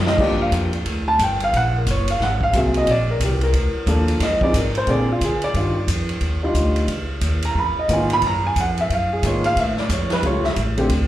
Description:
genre	jazz piano trio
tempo	179 BPM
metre	4/4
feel	swing 63% on 8ths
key	unclear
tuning	A4 = 439 Hz
part	upright bass	bass	0.0-11.1 s	Gb1 to D3	-22 LUFS	equal	none
part	warm upright piano	melody	0.1-10.9 s	C#3 to Cb6	-20 LUFS	equal	slapback echo
part	swinging big-band drum kit	drums	0.1-11.0 s	crash cymbal, hi-hat, kick drum, ride cymbal, snare drum	-25 LUFS	right 1 dB	none
room	light reverb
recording	live gig heard through the venue's PA, club reverb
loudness	-17 LUFS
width	side -13 dB against mid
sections	0.0-5.5 A section; 5.5-11.1 A section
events	drum fill 0.0; upright piano solo 0.0-11.1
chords	0.2 Gm7; 1.5 Gb; 2.2 Ab9; 2.9 Bbmaj7; 4.2 Fm7; 4.9 Bb9; 5.5 Ebmaj9; 6.9 Db13; 8.2 Gbmaj13; 9.6 A7b13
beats	| 0.19 0.52 0.86 1.20 | 1.53 1.86 2.20 2.54 | 2.87 3.21 3.54 3.87 | 4.21 4.54 4.88 5.21 | 5.55 5.88 6.22 6.55 | 6.89 7.22 7.56 7.89 | 8.23 8.56 8.90 9.23 | 9.56 9.90 10.23 10.57 | 10.90

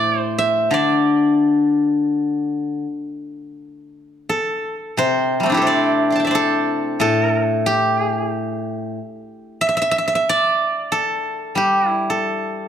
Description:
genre	chinese traditional, Chinese solo plucked strings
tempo	77-94 BPM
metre	4/4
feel	rubato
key	D shang mode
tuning	A4 = 440 Hz
part	steel-string zither	solo	0.0-12.7 s	A2 to D6	-17 LUFS	equal	none
room	moderate recital hall reverb, RT60 1.5 s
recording	dark, warm production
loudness	-16 LUFS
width	side -9 dB against mid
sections	0.0-3.6 A section; 3.6-12.7 B section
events	none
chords	none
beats	0.05 | 0.72 1.40 2.10 2.85 | 3.59 4.29 4.99 5.67 | 6.35 7.02 7.68 8.34 | 8.98 9.63 10.30 10.95 | 11.60 12.27

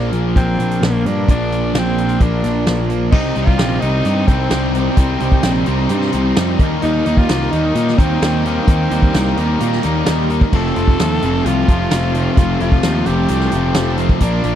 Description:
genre	classic rock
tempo	130 BPM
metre	4/4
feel	straight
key	C dorian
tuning	A4 = 441 Hz
part	growling tenor saxophone	melody	0.0-14.6 s	Bb3 to A4	-23 LUFS	equal	tape echo
part	bright tonewheel organ	sustained chords	0.0-14.6 s	F3 to C5	-31 LUFS	equal	none
part	cranked stack guitar	riff	0.0-14.6 s	F2 to Eb4	-22 LUFS	right 11 dB	overdrive
part	crunchy overdriven guitar	riff	0.0-14.6 s	F2 to Eb4	-22 LUFS	left 16 dB	none
part	fuzz picked electric bass	bass	0.0-14.6 s	F1 to Bb2	-18 LUFS	equal	overdrive
part	vintage drum kit	drums	0.1-14.5 s	crash cymbal, hi-hat, kick drum, snare drum	-15 LUFS	equal	none
part	biting overdriven guitar	riff	3.1-14.6 s	F2 to Eb4	-25 LUFS	equal	none
room	little or no reverb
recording	dry, close 1970s-style studio recording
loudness	-13 LUFS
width	side -10 dB against mid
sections	0.0-3.1 A section; 3.1-14.6 B section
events	none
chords	0.0 Bb; 3.1 Cm; 6.6 Eb; 10.5 F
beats	0.36 0.82 | 1.28 1.74 2.20 2.67 | 3.13 3.59 4.05 4.51 | 4.98 5.44 5.90 6.37 | 6.83 7.29 7.75 8.22 | 8.68 9.14 9.60 10.06 | 10.53 10.99 11.45 11.91 | 12.37 12.83 13.29 13.75 | 14.21

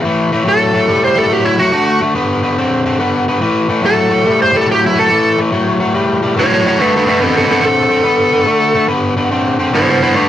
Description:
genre	blues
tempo	142 BPM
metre	4/4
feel	swing 67% on 8ths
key	unclear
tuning	A4 = 442 Hz
part	crunchy overdriven guitar	riff	0.0-10.3 s	A2 to C4	-13 LUFS	left 1 dB	none
part	smooth overdriven lead guitar	melody	0.5-10.3 s	C4 to C#5	-12 LUFS	right 1 dB	none
room	moderate booth ambience, RT60 0.2 s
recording	rough rehearsal-room recording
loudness	-11 LUFS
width	side -11 dB against mid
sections	0.0-10.3 A section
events	none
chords	0.0 A5; 1.7 D5; 3.4 A5; 6.8 D5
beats	| 0.04 0.46 0.88 1.30 | 1.73 2.15 2.57 2.99 | 3.41 3.83 4.25 4.67 | 5.10 5.52 5.94 6.36 | 6.78 7.20 7.62 8.04 | 8.46 8.89 9.31 9.73 | 10.15

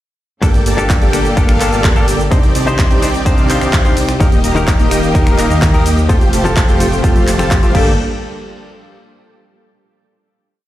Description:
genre	EDM, festival progressive house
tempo	127 BPM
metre	4/4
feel	straight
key	G minor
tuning	A4 = 440 Hz
part	direct-recorded clean electric guitar	accompaniment	0.4-7.9 s	G2 to C5	-20 LUFS	left 2 dB	sidechain pumping, ping-pong delay
part	bright symphonic string section	sustained chords	0.4-8.0 s	D3 to D5	-23 LUFS	left 1 dB	sidechain pumping
part	dense compressed supersaw	riff	0.4-7.9 s	A3 to Bb5	-18 LUFS	equal	sidechain pumping, ping-pong delay
part	wide detuned saw bass	bass	0.4-8.0 s	Eb1 to Eb2	-18 LUFS	equal	chorus, sidechain pumping
part	big-room dance drum kit	drums	0.4-7.8 s	crash cymbal, finger snaps, handclaps, hi-hat, ride cymbal, shaker	-22 LUFS	equal	overdrive
part	electronic kick drum	drums	0.4-7.8 s	none	-12 LUFS	equal	overdrive
room	digital ambience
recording	played on a big sound system in a bare room, stone room reverb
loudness	-10 LUFS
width	side -14 dB against mid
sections	0.4-8.0 drop; 8.0-9.9 final hit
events	drop 0.4-8.0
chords	0.4 Gmadd9; 2.3 Cmadd9; 4.2 Eb; 6.1 Fadd9; 7.7 Gmadd9; 8.0 N.C.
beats	| 0.42 0.90 1.37 1.84 | 2.31 2.79 3.26 3.73 | 4.20 4.68 5.15 5.62 | 6.09 6.57 7.04 7.51

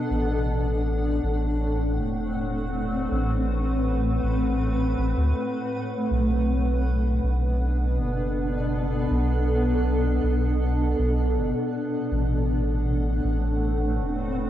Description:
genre	ambient dub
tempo	80 BPM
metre	4/4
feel	straight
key	A dorian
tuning	A4 = 440 Hz
part	granular cloud pad	sustained chords	0.0-14.5 s	A2 to F#5	-25 LUFS	equal	built-in reverb, cassette tape
part	soft dub sub bass	bass	0.1-14.5 s	E1 to D2	-24 LUFS	equal	transformer saturation
room	light reverb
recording	home recording on cassette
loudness	-22 LUFS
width	side -12 dB against mid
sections	0.0-12.1 A section; 12.1-14.5 B section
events	none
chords	0.1 Am69; 6.1 Bm7; 12.1 Am69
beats	| 0.11 0.86 1.61 2.36 | 3.11 3.86 4.61 5.36 | 6.11 6.86 7.61 8.36 | 9.11 9.86 10.61 11.36 | 12.11 12.86 13.61 14.36

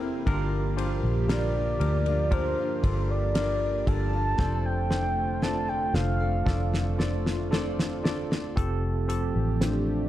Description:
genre	pop ballad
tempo	58 BPM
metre	4/4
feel	straight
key	F major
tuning	A4 = 440 Hz
part	tine electric piano	accompaniment	0.0-10.1 s	G2 to D5	-32 LUFS	equal	medium stereo tremolo
part	airy breathy pad	sustained chords	0.0-10.1 s	C3 to G4	-36 LUFS	left 2 dB	chorus
part	fingerpicked steel-string acoustic guitar	arpeggios	0.0-8.6 s	F3 to D5	-38 LUFS	left 4 dB	none
part	vintage muted fingered electric bass	bass	0.0-10.1 s	E1 to D2	-28 LUFS	equal	none
part	damped 70s drum kit	drums	0.3-9.9 s	hi-hat, kick drum, ride cymbal, snare drum	-29 LUFS	equal	none
part	mellow horn-like synth lead	melody	1.3-10.1 s	D4 to A5	-30 LUFS	equal	chorus
room	light reverb, small room ambience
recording	dark, warm production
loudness	-24 LUFS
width	side -13 dB against mid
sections	0.0-8.6 A section; 8.6-10.1 A section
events	drum fill 4.4-8.6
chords	0.3 Gm7; 4.4 F6; 8.6 Fadd9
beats	| 0.27 1.29 2.32 3.35 | 4.39 5.42 6.46 7.52 | 8.57 9.61

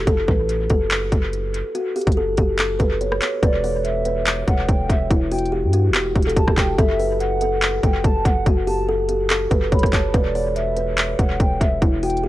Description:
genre	hip hop, trap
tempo	143 BPM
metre	4/4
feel	half-time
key	unclear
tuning	A4 = 440 Hz
part	kalimba	melody	0.0-12.3 s	E4 to C#5	-22 LUFS	equal	dub echo
part	long sustained 808-style bass	bass	0.0-12.3 s	E1 to G2	-24 LUFS	equal	none
part	trap drum kit	drums	0.1-12.2 s	handclaps, hi-hat, kick drum, rim click	-20 LUFS	equal	vintage 12-bit sampler grit, dub echo
part	hollow clarinet-like synth lead	second line	3.4-12.2 s	D5 to B5	-27 LUFS	equal	chorus, dub echo
room	light reverb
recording	echo-heavy mix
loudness	-17 LUFS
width	side -15 dB against mid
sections	0.0-3.4 A section; 3.4-12.3 B section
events	none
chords	0.1 F#m; 3.4 Em; 6.8 F#m; 10.1 E5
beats	| 0.07 0.49 0.91 1.33 | 1.75 2.17 2.59 3.01 | 3.43 3.85 4.27 4.69 | 5.11 5.53 5.95 6.36 | 6.78 7.20 7.62 8.04 | 8.46 8.88 9.30 9.72 | 10.14 10.56 10.98 11.40 | 11.82 12.24

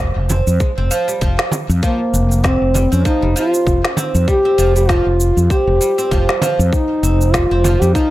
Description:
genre	organic downtempo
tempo	98 BPM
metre	4/4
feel	swing 57% on 16ths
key	unclear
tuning	A4 = 440 Hz
part	mellow fretless electric bass	bass	0.0-7.9 s	F1 to F2	-15 LUFS	equal	sidechain pumping
part	oud	arpeggios	0.3-8.1 s	F3 to C4	-21 LUFS	right 4 dB	tape echo
part	electronic shaker and snare drum	drums	0.3-8.1 s	none	-22 LUFS	equal	overdrive
part	frame drum	percussion	0.3-7.8 s	none	-22 LUFS	right 2 dB	none
part	electronic kick drum	drums	0.6-8.1 s	none	-19 LUFS	equal	overdrive
part	dark duduk	melody	1.8-8.1 s	Bb3 to G4	-17 LUFS	left 1 dB	vintage 12-bit sampler grit, analog delay
room	small room ambience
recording	dry, gritty hardware recording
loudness	-13 LUFS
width	side -16 dB against mid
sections	0.0-8.1 A section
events	none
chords	0.0 F5; 1.8 C5/F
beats	0.60 1.22 | 1.83 2.44 3.05 3.66 | 4.28 4.89 5.50 6.11 | 6.72 7.34 7.95

